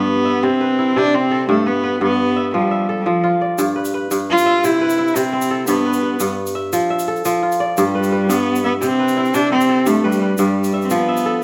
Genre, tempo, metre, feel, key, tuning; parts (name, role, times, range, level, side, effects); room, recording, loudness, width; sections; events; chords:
west african traditional, West African string and xylophone music; 115 BPM (dotted quarters); 12/8; straight; G mixolydian; A4 = 440 Hz
rich cello; melody; 0.0-11.4 s; F3 to F4; -19 LUFS; equal
kora; arpeggios; 0.0-11.4 s; G2 to E5; -21 LUFS; equal
egg shaker; percussion; 3.6-11.2 s; -34 LUFS; equal
moderate recital hall reverb, RT60 1.3 s; -17 LUFS; mono
0.0-11.4 A section
0.4 C; 1.5 G; 2.5 F; 3.6 G; 4.6 C; 5.7 G; 6.7 F; 7.8 G; 8.8 C; 9.9 G; 10.9 F